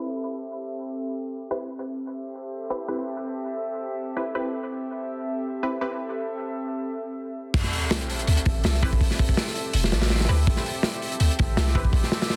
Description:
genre	drum and bass, jungle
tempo	164 BPM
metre	4/4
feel	swing 53% on 16ths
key	A minor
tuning	A4 = 443 Hz
part	warbly tape-like pad	sustained chords	0.0-12.4 s	C4 to E5	-34 LUFS	equal	chorus, built-in reverb
part	filtered dub chord stab	stabs	0.0-11.8 s	C4 to B4	-35 LUFS	equal	chorus, dub echo
part	long sustained 808-style bass	bass	7.5-12.0 s	E1 to D2	-25 LUFS	equal	none
part	crunchy breakbeat drum kit	drums	7.5-12.4 s	crash cymbal, hi-hat, kick drum, snare drum	-26 LUFS	equal	none
part	sub drop	sound effects	7.6-9.0 s	none	-35 LUFS	equal	none
room	light reverb, studio reverb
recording	dense, heavily limited modern master, low-pass filter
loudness	-26 LUFS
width	mono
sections	0.0-7.5 A section; 7.5-12.4 B section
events	filter sweep on synth stab 0.0-7.5; filter sweep 0.0-7.5; drop 7.5-12.4; impact 7.5-9.0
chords	0.0 Am7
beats	| 0.23 0.59 0.96 1.33 | 1.69 2.06 2.42 2.79 | 3.16 3.52 3.89 4.25 | 4.62 4.99 5.35 5.72 | 6.08 6.45 6.81 7.18 | 7.55 7.91 8.28 8.64 | 9.01 9.38 9.74 10.11 | 10.47 10.84 11.21 11.57 | 11.94 12.30

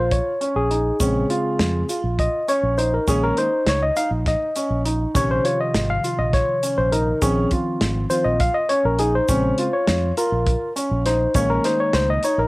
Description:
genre	progressive instrumental, band music in an uneven meter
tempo	203 BPM (eighths)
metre	7/8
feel	straight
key	Bb minor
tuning	A4 = 440 Hz
part	barky tine electric piano	accompaniment	0.0-12.5 s	C3 to F5	-20 LUFS	left 1 dB	overdrive, cassette tape
part	warm baby grand piano	arpeggios	0.0-12.5 s	Db4 to F4	-26 LUFS	right 2 dB	cassette tape
part	fingered electric bass with an envelope filter	bass	0.0-12.5 s	Ab1 to F2	-23 LUFS	equal	none
part	warm soul drum kit	drums	0.1-12.4 s	hi-hat, kick drum, snare drum	-24 LUFS	equal	cassette tape
part	egg shaker	percussion	1.0-12.5 s	none	-35 LUFS	right 3 dB	none
room	light reverb, small room ambience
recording	home recording on cassette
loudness	-18 LUFS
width	side -22 dB against mid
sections	0.0-12.5 A section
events	tine electric piano solo 0.0-12.5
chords	0.0 Db; 5.1 Dbmaj7; 9.3 Bbm7; 11.3 Bbm11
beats	0.11 0.41 0.70 | 1.00 1.30 1.59 1.89 2.19 2.48 2.78 | 3.08 3.37 3.67 3.96 4.26 4.55 4.85 | 5.15 5.44 5.74 6.03 6.33 6.62 6.92 | 7.22 7.51 7.81 8.10 8.40 8.69 8.99 | 9.28 9.58 9.88 10.17 10.46 10.76 11.05 | 11.35 11.64 11.94 12.23

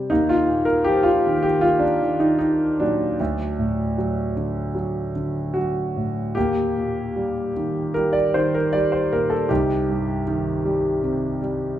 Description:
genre	classical, lyrical solo piano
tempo	77 BPM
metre	4/4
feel	rubato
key	unclear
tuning	A4 = 440 Hz
part	warm concert grand piano	solo	0.0-11.8 s	C2 to D5	-19 LUFS	equal	none
room	moderate recital hall reverb, RT60 1.5 s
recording	minimal, uncompressed stereo recording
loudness	-19 LUFS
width	side -12 dB against mid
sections	0.0-11.8 A section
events	grand piano fill 11.4-11.8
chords	0.1 Ebsus2; 3.2 D; 6.4 Eb; 9.5 Cm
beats	| 0.10 0.87 1.64 2.41 | 3.19 3.97 4.76 5.55 | 6.35 7.15 7.95 8.73 | 9.50 10.27 11.04

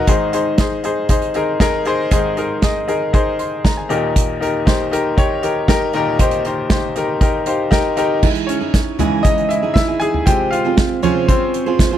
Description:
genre	piano-driven pop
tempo	118 BPM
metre	4/4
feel	straight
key	Ab major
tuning	A4 = 440 Hz
part	bright grand piano	accompaniment	0.0-12.0 s	Eb2 to C6	-17 LUFS	left 2 dB	none
part	unplugged drum kit	drums	0.1-11.9 s	crash cymbal, hi-hat, kick drum, snare drum, toms	-16 LUFS	right 1 dB	none
part	fingerpicked steel-string acoustic guitar	riff	8.2-12.0 s	C3 to C5	-19 LUFS	right 9 dB	none
room	studio reverb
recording	dry, close 1970s-style studio recording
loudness	-14 LUFS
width	side -10 dB against mid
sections	0.0-8.2 A section; 8.2-12.0 B section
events	grand piano fill 7.2-8.2; grand piano solo 8.2-12.0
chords	0.1 Ab; 3.9 Eb; 8.2 Dbmadd9; 10.3 Fm/C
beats	| 0.08 0.59 1.10 1.61 | 2.12 2.63 3.14 3.65 | 4.16 4.67 5.17 5.68 | 6.19 6.70 7.21 7.72 | 8.23 8.74 9.25 9.76 | 10.27 10.78 11.29 11.79

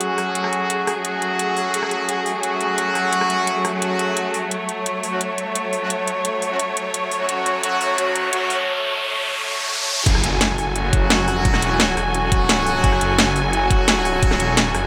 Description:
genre	dark technical drum and bass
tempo	173 BPM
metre	4/4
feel	straight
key	F# minor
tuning	A4 = 440 Hz
part	muted studio string section	sustained chords	0.0-14.9 s	F#3 to G#5	-26 LUFS	equal	sidechain pumping
part	clear brass ensemble	stabs	0.0-14.9 s	F#3 to F#4	-25 LUFS	equal	low-pass filter, dub echo
part	drum and bass drum kit	drums	0.0-14.8 s	crash cymbal, hi-hat, rim click, snare drum	-23 LUFS	equal	none
part	riser and impact	sound effects	6.9-11.4 s	none	-28 LUFS	equal	none
part	detuned saw bass	bass	10.1-14.9 s	E1 to F#1	-25 LUFS	equal	chorus
part	electronic kick drum	drums	10.1-14.3 s	none	-21 LUFS	equal	none
room	moderate lush hall reverb, RT60 1.8 s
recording	high-pass filter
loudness	-20 LUFS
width	mono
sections	0.0-10.1 A section; 10.1-14.9 B section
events	build-up 0.0-10.1; filter sweep 0.0-10.1; riser 6.9-10.1; drop 10.1-14.9; impact 10.1-11.4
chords	0.0 F#madd9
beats	0.01 | 0.35 0.70 1.05 1.39 | 1.74 2.09 2.43 2.78 | 3.13 3.47 3.82 4.17 | 4.51 4.86 5.21 5.55 | 5.90 6.25 6.59 6.94 | 7.29 7.63 7.98 8.33 | 8.68 9.02 9.37 9.72 | 10.06 10.41 10.76 11.10 | 11.45 11.80 12.14 12.49 | 12.84 13.19 13.53 13.88 | 14.22 14.57

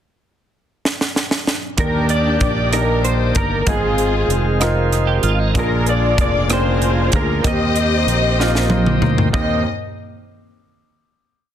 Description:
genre	slow gospel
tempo	64 BPM (dotted quarters)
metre	6/8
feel	straight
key	Eb major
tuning	A4 = 440 Hz
part	crisp fusion drum kit	drums	0.9-9.5 s	hi-hat, kick drum, rim click, snare drum, toms	-20 LUFS	equal	none
part	dark studio string section	melody	1.8-9.6 s	C4 to Eb5	-22 LUFS	left 5 dB	none
part	semi-hollow electric guitar	melody	1.8-9.6 s	Ab4 to Eb5	-24 LUFS	right 2 dB	ensemble chorus
part	clear grand piano	accompaniment	1.8-9.6 s	Eb2 to G5	-22 LUFS	right 1 dB	none
part	bright tonewheel organ	sustained chords	1.8-9.6 s	D3 to D5	-26 LUFS	right 3 dB	slow rotary speaker, overdrive
part	fingered electric bass	bass	1.8-9.6 s	F1 to Eb2	-19 LUFS	equal	none
part	clean electric guitar	second line	5.1-5.7 s	Eb4 to G4	-24 LUFS	right 9 dB	ensemble chorus
room	light reverb, small room ambience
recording	dense, heavily limited modern master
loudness	-15 LUFS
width	side -10 dB against mid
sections	0.0-1.8 pickup bar; 1.8-9.3 A section; 9.3-11.2 final chord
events	drum fill 0.8-1.8, 8.4-9.3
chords	0.0 N.C.; 1.8 Ebmaj7; 3.7 Ab6; 5.6 Bb7; 7.4 Eb6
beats	0.84 | 1.78 2.72 | 3.67 4.61 | 5.55 6.50 | 7.45 8.39 | 9.34

